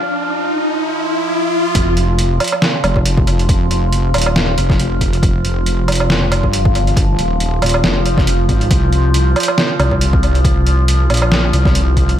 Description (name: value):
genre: deep dubstep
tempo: 138 BPM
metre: 4/4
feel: swing 56% on 16ths, half-time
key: unclear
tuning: A4 = 439 Hz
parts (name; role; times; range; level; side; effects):
- overtone-sweeping drone; sustained chords; 0.0-12.2 s; F3 to F4; -20 LUFS; equal; chorus, built-in reverb
- riser; sound effects; 0.0-1.8 s; none; -18 LUFS; equal; none
- wobble bass; bass; 1.8-12.2 s; Eb1 to C2; -15 LUFS; equal; chorus, high-pass filter
- electronic kick drum; drums; 1.8-12.1 s; none; -16 LUFS; equal; overdrive, high-pass filter on kick, studio reverb
- trip hop sampler-style drum kit; drums; 1.8-12.2 s; hi-hat, snare drum, woodblock; -18 LUFS; right 1 dB; overdrive, studio reverb, tape echo
room: light reverb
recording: echo-heavy mix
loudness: -12 LUFS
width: side -10 dB against mid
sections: 0.0-1.8 A section; 1.8-12.2 B section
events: build-up 0.0-1.8; riser 0.0-1.8; filter sweep on synth drone 0.0-1.8; break 0.0-1.8; drop 1.8-12.2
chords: 0.0 N.C.; 8.7 Bbsus2